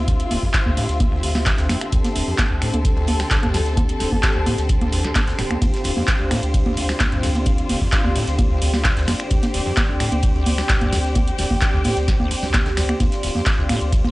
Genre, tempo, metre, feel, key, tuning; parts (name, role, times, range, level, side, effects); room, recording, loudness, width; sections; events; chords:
acid house; 130 BPM; 4/4; straight; D minor; A4 = 437 Hz
dark studio string section; sustained chords; 0.0-14.1 s; D3 to A4; -27 LUFS; left 1 dB; vintage 12-bit sampler grit, sidechain pumping
round analog bass; bass; 0.0-14.1 s; D1 to G2; -24 LUFS; equal; sidechain pumping
granular cloud pad; texture; 0.0-14.1 s; G4 to A5; -29 LUFS; equal; built-in reverb, sidechain pumping
acid bass, saw; riff; 0.1-14.1 s; C2 to D3; -25 LUFS; equal; overdrive, ensemble chorus
booming analog drum machine; drums; 0.1-14.1 s; congas, finger snaps, handclaps, hi-hat, ride cymbal, snare drum; -23 LUFS; right 1 dB
electronic kick drum; drums; 0.1-14.0 s; -20 LUFS; equal
tight metal drum kit; drums; 0.1-14.1 s; ride cymbal, snare drum; -39 LUFS; left 1 dB
little or no reverb; dry, gritty hardware recording, cassette tape, nothing above 10.4 kHz; -17 LUFS; side -20 dB against mid
0.0-14.1 A section
0.0 Dm7